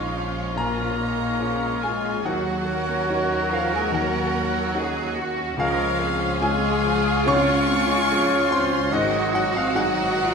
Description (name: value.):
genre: cinematic, emotional film score for orchestra.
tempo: 72 BPM.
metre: 4/4.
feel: rubato.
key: Db major.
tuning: A4 = 443 Hz.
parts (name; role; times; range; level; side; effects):
rich chamber violin section; melody; 0.0-10.3 s; F4 to Gb4; -30 LUFS; equal; none.
dark clarinet; second line; 0.0-10.3 s; Eb4 to Db5; -32 LUFS; equal; none.
rich studio violin section; second line; 0.0-10.3 s; Eb5 to Db6; -31 LUFS; left 1 dB; none.
silver concert flute; second line; 0.0-10.3 s; F6 to Gb6; -30 LUFS; left 2 dB; none.
warm oboe; second line; 0.0-10.3 s; Db5 to Eb5; -32 LUFS; right 1 dB; none.
clear grand piano; accompaniment; 0.0-10.3 s; Ab1 to Db6; -28 LUFS; left 1 dB; none.
rich studio viola section; accompaniment; 0.0-10.3 s; Eb3 to Db4; -32 LUFS; right 2 dB; none.
mellow French horn section; sustained chords; 0.0-10.3 s; Eb3 to Db4; -27 LUFS; left 2 dB; none.
clear studio cello section; bass; 0.0-10.3 s; Db4 to Bb4; -30 LUFS; right 4 dB; none.
clear studio double bass section; bass; 0.0-10.3 s; Ab1 to Eb2; -31 LUFS; right 2 dB; none.
room: wet scoring stage reverb, RT60 2.1 s.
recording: minimal, uncompressed stereo recording.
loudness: -20 LUFS.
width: side -5 dB against mid.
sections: 0.0-10.3 A section.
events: none.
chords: 0.0 Bbm7; 2.3 Ebm7; 5.6 Dbmaj7; 8.9 Ab7.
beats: 0.57 1.41 | 2.25 3.10 3.93 4.76 | 5.59 6.42 7.27 8.10 | 8.93 9.77.